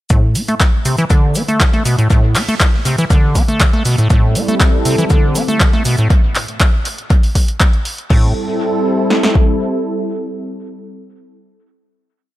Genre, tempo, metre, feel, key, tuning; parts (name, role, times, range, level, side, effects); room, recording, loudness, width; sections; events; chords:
acid house; 120 BPM; 4/4; straight; A4 = 440 Hz
acid bass, square; riff; 0.1-8.3 s; A2 to C4; -16 LUFS; equal; overdrive, analog delay
damped 70s drum kit; drums; 0.1-6.0 s; hi-hat, shaker, snare drum; -30 LUFS; equal
punchy analog drum machine; drums; 0.1-9.5 s; kick drum, snare drum; -12 LUFS; equal; overdrive
punchy analog drum machine; drums; 0.1-8.2 s; crash cymbal, handclaps, hi-hat; -20 LUFS; equal; overdrive, tape echo
egg shaker; percussion; 0.1-6.1 s; -30 LUFS; right 5 dB
warm analog pad; sustained chords; 4.1-11.4 s; G3 to A4; -18 LUFS; equal; chorus, sidechain pumping
light reverb, small room ambience; echo-heavy mix; -12 LUFS; side -15 dB against mid
0.1-8.1 groove; 8.1-12.1 final chord
0.1 Am7